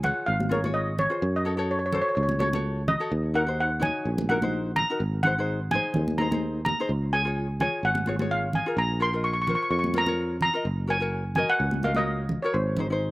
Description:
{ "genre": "calypso", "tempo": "127 BPM", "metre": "4/4", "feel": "swing 54% on 16ths", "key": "Db major", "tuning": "A4 = 440 Hz", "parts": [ { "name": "steel pan", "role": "melody", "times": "0.0-13.1 s", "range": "C5 to Db6", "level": "-27 LUFS", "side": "equal", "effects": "slapback echo" }, { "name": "ukulele", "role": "accompaniment", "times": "0.0-13.1 s", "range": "Eb4 to Eb5", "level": "-30 LUFS", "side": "left 2 dB", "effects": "none" }, { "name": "sustaining fretless electric bass", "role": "bass", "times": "0.0-13.1 s", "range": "Gb1 to Gb2", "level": "-28 LUFS", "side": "equal", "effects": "none" }, { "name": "congas", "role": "percussion", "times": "0.0-12.9 s", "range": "none", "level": "-31 LUFS", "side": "right 1 dB", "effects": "none" } ], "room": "little or no reverb", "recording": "recorded outdoors, with no room sound", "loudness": "-23 LUFS", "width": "side -20 dB against mid", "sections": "0.0-13.1 A section", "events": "none", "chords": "0.0 Db; 1.2 Gbm; 3.1 Ebm; 5.0 Abadd9; 6.9 Db; 8.8 Bbm; 10.7 Gb; 12.5 Ab", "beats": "0.28 0.76 | 1.23 1.70 2.17 2.64 | 3.12 3.59 4.06 4.53 | 5.00 5.47 5.95 6.42 | 6.89 7.36 7.83 8.30 | 8.77 9.24 9.71 10.18 | 10.65 11.12 11.59 12.06 | 12.53 13.00" }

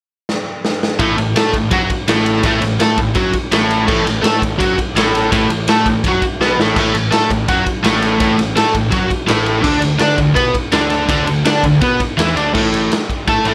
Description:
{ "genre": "garage rock duo or trio", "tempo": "167 BPM", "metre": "4/4", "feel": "straight", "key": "unclear", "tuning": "A4 = 440 Hz", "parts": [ { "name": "raw garage drum kit", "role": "drums", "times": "0.3-13.5 s", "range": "crash cymbal, kick drum, ride cymbal, snare drum", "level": "-20 LUFS", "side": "equal", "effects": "none" }, { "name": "overdriven electric guitar", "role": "riff", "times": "1.0-13.5 s", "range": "A2 to D5", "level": "-17 LUFS", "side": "equal", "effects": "none" }, { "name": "fuzz picked electric bass", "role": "bass", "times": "1.0-13.5 s", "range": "A1 to D3", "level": "-24 LUFS", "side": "equal", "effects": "overdrive, tube saturation" } ], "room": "light reverb", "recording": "none", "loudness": "-15 LUFS", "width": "mono", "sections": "0.0-1.0 A section; 1.0-12.5 B section", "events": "drum fill 0.3-1.0, 6.4-6.8", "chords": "0.0 N.C.; 1.0 F#m/A; 9.6 Bmadd11/D; 12.5 A5", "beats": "0.29 0.65 | 1.01 1.37 1.73 2.08 | 2.44 2.80 3.16 3.52 | 3.88 4.24 4.60 4.96 | 5.32 5.68 6.04 6.40 | 6.76 7.12 7.48 7.84 | 8.20 8.56 8.93 9.29 | 9.65 10.01 10.37 10.73 | 11.10 11.46 11.82 12.18 | 12.55 12.91 13.27" }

